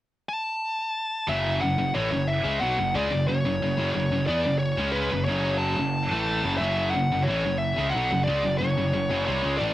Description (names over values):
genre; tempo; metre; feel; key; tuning
metal; 90 BPM; 4/4; straight; F# minor; A4 = 442 Hz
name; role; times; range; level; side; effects
high-gain lead guitar; melody; 0.3-9.7 s; B4 to A5; -27 LUFS; left 1 dB; distortion, cassette tape
scooped high-gain guitar; riff; 1.3-9.7 s; F#2 to C#4; -28 LUFS; right 5 dB; distortion, cassette tape
tight distorted guitar; riff; 1.3-9.7 s; F#2 to C#4; -29 LUFS; left 5 dB; distortion, cassette tape
fuzz picked electric bass; bass; 1.3-9.7 s; F#1 to E2; -30 LUFS; equal; overdrive
room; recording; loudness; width
light reverb; home recording on cassette; -23 LUFS; side -14 dB against mid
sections
0.0-1.3 A section; 1.3-9.7 B section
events
none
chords
0.0 N.C.; 1.3 F#m